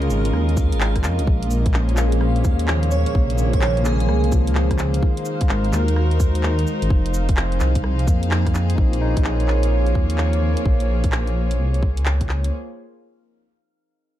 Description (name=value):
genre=future garage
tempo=128 BPM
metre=4/4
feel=swing 65% on 16ths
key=Bb minor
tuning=A4 = 440 Hz
part: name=barky tine electric piano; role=accompaniment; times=0.0-10.7 s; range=C3 to Bb4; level=-28 LUFS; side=left 2 dB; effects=overdrive, sidechain pumping, analog delay
part: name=rich chamber string section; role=sustained chords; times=0.0-12.5 s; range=Bb2 to F5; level=-26 LUFS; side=right 1 dB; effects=vintage 12-bit sampler grit, sidechain pumping
part: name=dark detuned saw bass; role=bass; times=0.0-12.5 s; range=F1 to F2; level=-20 LUFS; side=equal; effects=tube saturation, sidechain pumping
part: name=garage drum kit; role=drums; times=0.0-12.5 s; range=cabasa, handclaps, hi-hat, rim click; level=-28 LUFS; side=equal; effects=none
part: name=backwards swelling texture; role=texture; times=0.0-8.8 s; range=F5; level=-35 LUFS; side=right 1 dB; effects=built-in reverb
part: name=electronic kick drum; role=drums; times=0.6-12.3 s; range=none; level=-19 LUFS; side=equal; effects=none
part: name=airy dreamy lead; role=melody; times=2.9-4.3 s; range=Ab4 to Db5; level=-26 LUFS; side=right 4 dB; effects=chorus, ping-pong delay
room=light reverb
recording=none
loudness=-17 LUFS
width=side -12 dB against mid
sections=0.0-8.8 A section; 8.8-12.5 B section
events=none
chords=0.0 Db69; 1.3 Bbm7; 5.0 Ab7; 6.9 Fm7; 8.8 Bbm7